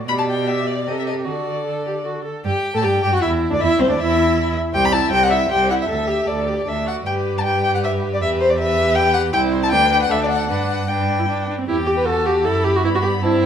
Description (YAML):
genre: quick classical-period movement for string quartet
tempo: 156 BPM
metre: 3/4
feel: straight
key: G major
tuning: A4 = 441 Hz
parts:
  - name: rich cello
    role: bass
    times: 0.0-13.5 s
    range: C2 to D3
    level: -23 LUFS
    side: right 4 dB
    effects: none
  - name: warm violin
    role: melody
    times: 0.1-13.5 s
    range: C4 to B5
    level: -27 LUFS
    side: left 6 dB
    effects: none
  - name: rich violin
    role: second line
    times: 0.1-13.5 s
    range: B3 to B5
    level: -20 LUFS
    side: left 3 dB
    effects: none
  - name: rich viola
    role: accompaniment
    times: 0.1-13.5 s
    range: C4 to B4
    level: -22 LUFS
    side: right 1 dB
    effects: none
room: wet stone room reverb, RT60 1.0 s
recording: none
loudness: -16 LUFS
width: side -8 dB against mid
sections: 0.0-2.4 A section; 2.4-11.7 B section; 11.7-13.5 C section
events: none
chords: 0.1 G/B; 0.9 Am7b5/C; 1.3 D; 2.4 G5; 3.6 Cadd9; 4.7 C; 5.9 Dsus4; 6.7 D; 7.1 G; 8.2 Em; 9.3 C; 9.7 G/D; 10.5 G; 11.7 Em; 12.8 Em/G